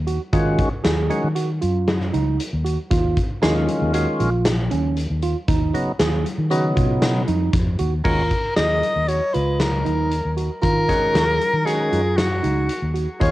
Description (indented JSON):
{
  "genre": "progressive instrumental, band music in an uneven meter",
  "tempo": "116 BPM",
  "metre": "5/4",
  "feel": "straight",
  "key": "Eb minor",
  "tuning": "A4 = 442 Hz",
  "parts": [
    { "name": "fretless electric bass", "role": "bass", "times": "0.0-13.3 s", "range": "Bb1 to Eb3", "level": "-22 LUFS", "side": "equal", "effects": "lush chorus" },
    { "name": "tine electric piano", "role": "arpeggios", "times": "0.1-13.3 s", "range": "Db4 to Ab4", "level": "-26 LUFS", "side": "right 6 dB", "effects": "medium stereo tremolo, cassette tape" },
    { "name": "huge arena drum kit", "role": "drums", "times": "0.1-13.3 s", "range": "crash cymbal, hi-hat, kick drum, snare drum", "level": "-23 LUFS", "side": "left 1 dB", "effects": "cassette tape" },
    { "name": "percussive tonewheel organ", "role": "accompaniment", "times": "0.3-13.3 s", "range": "Db3 to Gb4", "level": "-23 LUFS", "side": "equal", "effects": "overdrive, slow rotary speaker, cassette tape" },
    { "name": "warm soprano saxophone", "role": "melody", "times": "8.0-13.3 s", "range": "Gb4 to Eb5", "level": "-21 LUFS", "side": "left 1 dB", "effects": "cassette tape, tape echo" }
  ],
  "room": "light reverb, small room ambience",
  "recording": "home recording on cassette",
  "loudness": "-18 LUFS",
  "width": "side -16 dB against mid",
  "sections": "0.0-8.1 A section; 8.1-13.3 B section",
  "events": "none",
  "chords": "0.0 Ebmadd9; 2.9 Db/Eb; 5.5 Abm/Eb (rootless); 8.1 Ebmadd9",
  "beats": "| 0.33 0.84 1.36 1.88 2.39 | 2.91 3.42 3.94 4.45 4.97 | 5.48 6.00 6.51 7.02 7.54 | 8.05 8.57 9.08 9.60 10.11 | 10.63 11.14 11.66 12.18 12.69 | 13.21"
}